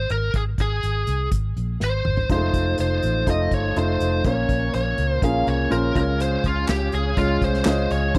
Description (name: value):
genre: piano-driven pop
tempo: 123 BPM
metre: 4/4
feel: straight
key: unclear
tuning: A4 = 440 Hz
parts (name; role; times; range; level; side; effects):
- biting lead guitar; melody; 0.0-8.2 s; F4 to F5; -28 LUFS; equal; overdrive
- vintage muted fingered electric bass; bass; 0.0-8.2 s; F1 to Db2; -26 LUFS; equal; none
- unplugged drum kit; drums; 0.1-8.2 s; handclaps, hi-hat, kick drum, snare drum, toms; -28 LUFS; equal; none
- clear upright piano; accompaniment; 2.3-8.2 s; Ab2 to Eb5; -26 LUFS; equal; none
- tonewheel organ; sustained chords; 2.3-8.2 s; Db3 to A4; -37 LUFS; equal; none
room: light reverb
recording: dry, close 1970s-style studio recording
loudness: -22 LUFS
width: mono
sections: 0.0-8.2 A section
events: drum fill 1.8-2.3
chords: 0.3 Ab; 2.3 F7; 4.2 Bbmadd9; 6.0 Db